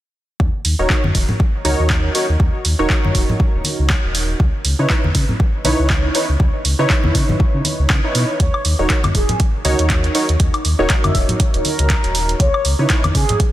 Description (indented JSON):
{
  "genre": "deep house",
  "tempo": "120 BPM",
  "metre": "4/4",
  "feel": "swing 57% on 16ths",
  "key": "unclear",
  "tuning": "A4 = 440 Hz",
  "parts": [
    { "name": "sub bass with octave", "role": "bass", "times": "0.4-13.2 s", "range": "D#1 to C#3", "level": "-18 LUFS", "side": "equal", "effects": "none" },
    { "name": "electronic kick drum", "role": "drums", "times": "0.4-13.5 s", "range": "none", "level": "-17 LUFS", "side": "equal", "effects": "overdrive, studio reverb" },
    { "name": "punchy analog drum machine", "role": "drums", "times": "0.6-13.5 s", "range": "handclaps, hi-hat, woodblock", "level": "-22 LUFS", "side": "right 1 dB", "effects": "studio reverb" },
    { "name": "warm analog keys", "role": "stabs", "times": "0.8-13.0 s", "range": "D#4 to C#5", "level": "-21 LUFS", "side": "right 1 dB", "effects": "chorus, sidechain pumping, dub echo" },
    { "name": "congas", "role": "percussion", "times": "1.0-13.4 s", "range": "none", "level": "-23 LUFS", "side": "left 1 dB", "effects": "none" },
    { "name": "mellow horn-like synth lead", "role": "melody", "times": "8.4-13.4 s", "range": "G#4 to E5", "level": "-24 LUFS", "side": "equal", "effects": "lush chorus, dub echo" }
  ],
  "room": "light reverb",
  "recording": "dense, heavily limited modern master",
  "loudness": "-14 LUFS",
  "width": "side -14 dB against mid",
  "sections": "0.4-13.5 A section",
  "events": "none",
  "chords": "0.4 D#m7; 4.4 C#m9; 8.4 D#m7; 12.4 C#m9",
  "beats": "| 0.40 0.90 1.40 1.90 | 2.40 2.90 3.40 3.90 | 4.40 4.90 5.40 5.90 | 6.40 6.90 7.40 7.90 | 8.40 8.90 9.40 9.90 | 10.40 10.90 11.40 11.90 | 12.40 12.90 13.40"
}